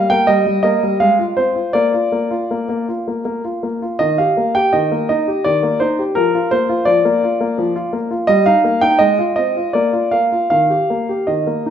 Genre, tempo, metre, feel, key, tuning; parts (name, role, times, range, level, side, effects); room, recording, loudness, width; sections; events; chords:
classical-period piano sonatina; 82 BPM; 3/4; uneven beats, rubato; Eb major; A4 = 436 Hz
clear concert grand piano; solo; 0.0-11.7 s; Eb3 to G5; -14 LUFS; equal
wet recital hall reverb, RT60 1.4 s; -14 LUFS; side -8 dB against mid
0.0-11.7 A section
0.0 Eb/G; 1.0 Fm/Ab; 1.8 Bb; 4.0 Eb; 6.2 Bb/F; 8.3 Eb/G; 9.0 Fm/Ab; 9.7 Bb; 10.5 Eb